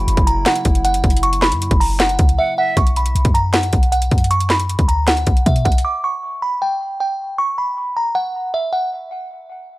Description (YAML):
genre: hip hop, trap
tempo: 156 BPM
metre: 4/4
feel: half-time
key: B harmonic minor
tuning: A4 = 440 Hz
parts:
  - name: delicate synth tine bell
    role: melody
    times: 0.0-8.9 s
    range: E5 to D6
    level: -19 LUFS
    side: right 1 dB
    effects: chorus, low-pass filter, tape echo
  - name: dark analog pad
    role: sustained chords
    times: 0.0-2.7 s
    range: C#3 to E4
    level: -30 LUFS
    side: equal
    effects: chorus
  - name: clean 808-style bass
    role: bass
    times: 0.0-5.8 s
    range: F#1 to B2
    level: -18 LUFS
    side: equal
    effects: none
  - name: trap drum kit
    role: drums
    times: 0.1-5.8 s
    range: handclaps, hi-hat, kick drum, snare drum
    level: -16 LUFS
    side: equal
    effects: none
  - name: breathy reedy silver concert flute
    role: second line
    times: 2.4-2.8 s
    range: E5 to F#5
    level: -24 LUFS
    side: right 2 dB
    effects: tape echo
room: little or no reverb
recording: dry, gritty hardware recording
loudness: -14 LUFS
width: side -18 dB against mid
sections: 0.0-2.8 A section; 2.8-8.9 B section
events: break 2.4-2.8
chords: 0.0 F#; 2.8 Bm; 5.8 N.C.